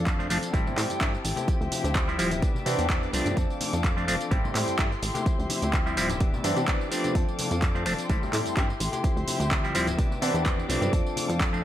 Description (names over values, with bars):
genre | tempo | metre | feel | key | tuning
filtered disco house | 127 BPM | 4/4 | straight | C major | A4 = 439 Hz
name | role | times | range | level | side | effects
warm chamber string section | sustained chords | 0.0-11.6 s | F3 to D6 | -36 LUFS | left 1 dB | sidechain pumping, low-pass filter
direct-recorded clean electric guitar | riff | 0.0-11.6 s | E3 to A4 | -34 LUFS | left 4 dB | sidechain pumping, low-pass filter
plucky analog bass | bass | 0.0-11.6 s | D1 to C3 | -31 LUFS | equal | sidechain pumping, low-pass filter
electronic kick drum | drums | 0.1-11.5 s | none | -26 LUFS | equal | none
punchy analog drum machine | drums | 0.1-11.6 s | finger snaps, handclaps, hi-hat, tambourine | -32 LUFS | right 1 dB | sidechain pumping on hats, sidechain pumping on perc
tambourine and congas | percussion | 0.1-11.5 s | none | -39 LUFS | left 3 dB | none
clav | accompaniment | 0.2-11.6 s | E3 to E4 | -29 LUFS | right 1 dB | phaser, vintage 12-bit sampler grit, sidechain pumping, low-pass filter
room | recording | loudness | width
light reverb | none | -24 LUFS | side -12 dB against mid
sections
0.0-11.6 A section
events
none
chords
0.0 F6; 0.5 Am7; 1.5 Dm11; 2.4 Cmaj9; 3.4 F6; 4.3 Am7; 5.3 Dm11; 6.2 Cmaj9; 7.2 F6; 8.1 Am7; 9.0 Dm11; 10.0 Cmaj9; 10.9 F6